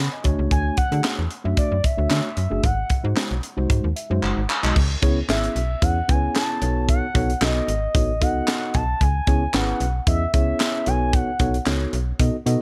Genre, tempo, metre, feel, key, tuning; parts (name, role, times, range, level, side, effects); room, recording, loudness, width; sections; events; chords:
early-eighties boogie funk; 113 BPM; 4/4; straight; C# minor from 4.8 s; A4 = 440 Hz
mellow tine electric piano; accompaniment; 0.0-12.6 s; G#3 to B5; -29 LUFS; equal
slap-like FM bass; bass; 0.0-12.6 s; F#1 to D3; -26 LUFS; equal
tight funk drum kit; drums; 0.2-12.6 s; crash cymbal, handclaps, hi-hat, kick drum, snare drum; -25 LUFS; equal
expressive synth lead; melody; 0.5-11.7 s; D5 to A5; -29 LUFS; equal; chorus
small room reverb; -22 LUFS; mono
0.0-4.8 A section; 4.8-12.6 B section
tine electric piano fill 3.7-4.8; drum fill 4.2-4.8
0.2 Dmaj7; 2.6 G#7; 4.8 C#m7; 6.6 B9; 9.0 C#m7; 10.9 B9